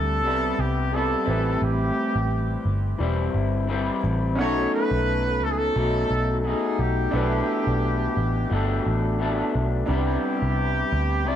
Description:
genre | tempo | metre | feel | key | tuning
indie pop, bedroom pop | 87 BPM | 4/4 | swing 55% on 16ths | C major | A4 = 440 Hz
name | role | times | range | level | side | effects
clear trumpet | melody | 0.0-11.4 s | G4 to D5 | -27 LUFS | right 1 dB | lush chorus, tape echo
bright upright piano | accompaniment | 0.0-11.4 s | A3 to F#5 | -32 LUFS | right 4 dB | none
electric guitar through a small old amp | accompaniment | 0.0-11.4 s | A2 to E4 | -26 LUFS | left 3 dB | lush chorus, vibrato effect
vintage muted picked electric bass | bass | 0.0-11.4 s | E1 to D2 | -25 LUFS | equal | none
room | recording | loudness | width
light reverb | none | -21 LUFS | side -10 dB against mid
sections
0.0-11.4 A section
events
none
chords
0.0 Cmaj7; 1.3 Am7; 4.4 B7; 7.1 E7sus4; 9.9 Cmaj7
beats
0.24 0.93 | 1.62 2.31 3.00 3.69 | 4.38 5.07 5.75 6.44 | 7.13 7.82 8.51 9.20 | 9.88 10.57 11.26

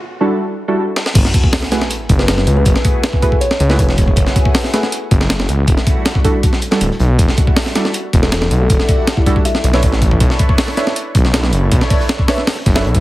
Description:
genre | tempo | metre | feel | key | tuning
drum and bass, jungle | 159 BPM | 4/4 | straight | F# minor | A4 = 441 Hz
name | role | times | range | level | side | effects
deep mellow chord stab | stabs | 0.2-12.8 s | G3 to E5 | -20 LUFS | right 2 dB | chorus, cassette tape, dub echo
breakbeat sampler-style drum kit | drums | 1.0-13.0 s | crash cymbal, hi-hat, kick drum, snare drum | -13 LUFS | equal | high-pass filter on hats, high-pass filter on kick, high-pass filter on snare, high-pass filter on cymbals, high-pass filter on room
crunchy breakbeat drum kit | drums | 1.1-13.0 s | hi-hat, snare drum | -32 LUFS | equal | none
detuned saw bass | bass | 1.2-13.0 s | D1 to C#2 | -14 LUFS | equal | tube saturation
sub drop | sound effects | 1.3-2.7 s | none | -25 LUFS | equal | none
kalimba | melody | 2.2-3.7, 8.2-9.7 s | E4 to E5 | -23 LUFS | left 1 dB | dub echo
room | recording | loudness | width
light reverb, small room reverb | heavily compressed radio sound | -12 LUFS | side -17 dB against mid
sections
0.0-1.1 A section; 1.1-13.0 B section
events
break 0.0-1.1; build-up 0.0-1.1; filter sweep on synth stab 0.0-1.1; drum fill 1.0; drop 1.1-13.0; impact 1.1-2.7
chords
0.0 Em11; 1.1 F#m11; 5.7 Em11; 9.5 Bm11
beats
0.02 0.40 0.77 | 1.15 1.53 1.91 2.28 | 2.66 3.04 3.42 3.79 | 4.17 4.55 4.92 5.30 | 5.68 6.06 6.43 6.81 | 7.19 7.57 7.94 8.32 | 8.70 9.07 9.45 9.83 | 10.21 10.58 10.96 11.34 | 11.72 12.09 12.47 12.85

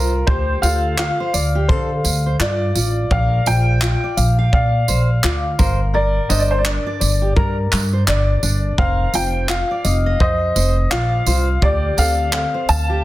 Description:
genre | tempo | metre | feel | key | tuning
acoustic pop | 85 BPM | 4/4 | swing 60% on 16ths | unclear | A4 = 440 Hz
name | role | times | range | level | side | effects
clear upright piano | melody | 0.0-13.0 s | Bb4 to A5 | -22 LUFS | equal | plate reverb, digital delay
tenor ukulele | accompaniment | 0.0-13.0 s | C4 to F5 | -25 LUFS | left 4 dB | plate reverb
fingerpicked steel-string acoustic guitar | arpeggios | 0.0-13.0 s | G4 to F5 | -29 LUFS | right 3 dB | plate reverb
upright bass | bass | 0.0-13.0 s | F1 to D3 | -18 LUFS | equal | none
natural country drum kit | drums | 0.3-12.9 s | handclaps, kick drum, tambourine | -21 LUFS | equal | none
room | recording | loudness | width
light reverb | dense, heavily limited modern master | -15 LUFS | side -16 dB against mid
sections
0.0-13.0 A section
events
none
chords
0.3 Dm7; 3.1 Bb; 5.6 Gm; 8.8 F7sus4; 11.6 Dm7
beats
| 0.27 0.98 1.69 2.40 | 3.11 3.82 4.53 5.23 | 5.94 6.65 7.36 8.07 | 8.78 9.49 10.20 10.91 | 11.62 12.33 13.04

